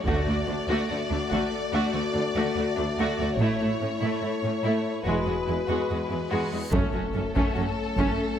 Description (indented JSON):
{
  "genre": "cinematic, epic orchestral film score",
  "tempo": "72 BPM",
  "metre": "4/4",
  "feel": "straight",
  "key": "unclear",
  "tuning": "A4 = 441 Hz",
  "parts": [
    { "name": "clear symphonic violin section", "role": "melody", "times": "0.0-8.4 s", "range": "A4 to D5", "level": "-32 LUFS", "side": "left 3 dB", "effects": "none" },
    { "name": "rich symphonic violin section", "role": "second line", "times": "0.1-8.2 s", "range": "A3 to F#4", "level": "-34 LUFS", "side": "left 2 dB", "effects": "none" },
    { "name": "clear symphonic viola section", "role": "accompaniment", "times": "0.1-8.2 s", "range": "G#3 to C#4", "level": "-31 LUFS", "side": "right 1 dB", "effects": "none" },
    { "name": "warm French horn section", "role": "sustained chords", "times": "0.1-8.4 s", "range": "G#3 to F#4", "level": "-31 LUFS", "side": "left 4 dB", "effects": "none" },
    { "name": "clear studio double bass section", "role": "bass", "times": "0.1-8.1 s", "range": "E1 to D2", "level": "-31 LUFS", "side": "right 2 dB", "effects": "none" },
    { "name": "clear symphonic cello section", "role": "bass", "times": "0.1-8.1 s", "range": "D2 to A2", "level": "-30 LUFS", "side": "right 2 dB", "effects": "none" },
    { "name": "solo taiko drums", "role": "drums", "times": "0.1-1.7, 6.7-8.4 s", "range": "none", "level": "-30 LUFS", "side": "equal", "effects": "none" },
    { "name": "reverse cymbal and impact", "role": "sound effects", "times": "6.3-8.4 s", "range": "none", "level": "-40 LUFS", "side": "equal", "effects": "none" }
  ],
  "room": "moderate scoring stage reverb, RT60 1.8 s",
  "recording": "none",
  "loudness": "-24 LUFS",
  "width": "side -9 dB against mid",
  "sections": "0.0-6.7 A section; 6.7-8.4 B section",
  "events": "build-up 0.0-6.7; reverse cymbal 6.3-6.7; impact 6.7-8.4",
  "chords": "0.1 D; 3.4 A; 5.1 Eadd9; 6.7 F#m"
}